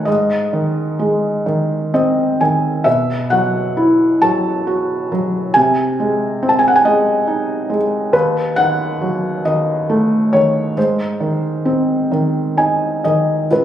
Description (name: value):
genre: classical, lyrical solo piano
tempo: 42-48 BPM (dotted quarters)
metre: 6/8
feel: rubato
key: unclear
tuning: A4 = 439 Hz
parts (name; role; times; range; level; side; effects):
- felt-muted upright piano; solo; 0.0-13.6 s; C#2 to A5; -14 LUFS; equal; none
room: moderate recital hall reverb, RT60 1.7 s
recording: recorded on a phone in the room, studio reverb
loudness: -14 LUFS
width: side -10 dB against mid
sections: 0.0-13.5 A section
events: felt piano fill 1.5-2.9, 12.1-13.5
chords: 0.1 G#; 2.9 Bsus4; 5.6 G#/B#; 8.1 D#dim; 10.8 G#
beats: | 0.07 1.47 | 2.87 4.22 | 5.56 6.85 | 8.13 9.45 | 10.77 12.11 | 13.50